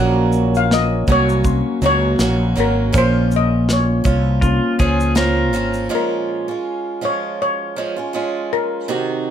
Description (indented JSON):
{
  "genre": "acoustic pop",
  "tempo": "81 BPM",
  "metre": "4/4",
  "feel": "swing 55% on 16ths",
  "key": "Bb minor",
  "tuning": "A4 = 443 Hz",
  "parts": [
    { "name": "steel pan", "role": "melody", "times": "0.0-9.3 s", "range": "Bb4 to Gb5", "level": "-21 LUFS", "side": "left 3 dB", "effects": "none" },
    { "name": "felt-muted upright piano", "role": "accompaniment", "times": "0.0-5.9 s", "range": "Bb3 to C6", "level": "-22 LUFS", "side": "left 4 dB", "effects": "none" },
    { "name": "picked swing-style acoustic guitar", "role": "accompaniment", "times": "0.0-9.3 s", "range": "Bb2 to Gb4", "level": "-21 LUFS", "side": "right 4 dB", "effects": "none" },
    { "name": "fretless electric bass", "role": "bass", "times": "0.0-5.9 s", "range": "Ab1 to Db2", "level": "-18 LUFS", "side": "equal", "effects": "none" },
    { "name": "modern studio drum kit", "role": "drums", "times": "0.3-5.9 s", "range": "kick drum, shaker, snare drum", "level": "-20 LUFS", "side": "equal", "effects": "none" },
    { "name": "pedal steel guitar", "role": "second line", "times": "4.4-5.9 s", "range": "F4 to Bb4", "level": "-23 LUFS", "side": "left 1 dB", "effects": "none" }
  ],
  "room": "wet studio reverb, RT60 0.7 s",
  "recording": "none",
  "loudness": "-15 LUFS",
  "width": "side -9 dB against mid",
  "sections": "0.0-5.9 A section; 5.9-9.3 B section",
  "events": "none",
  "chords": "0.0 Gb/Bb; 2.9 Bbmadd9; 5.9 Bbm7"
}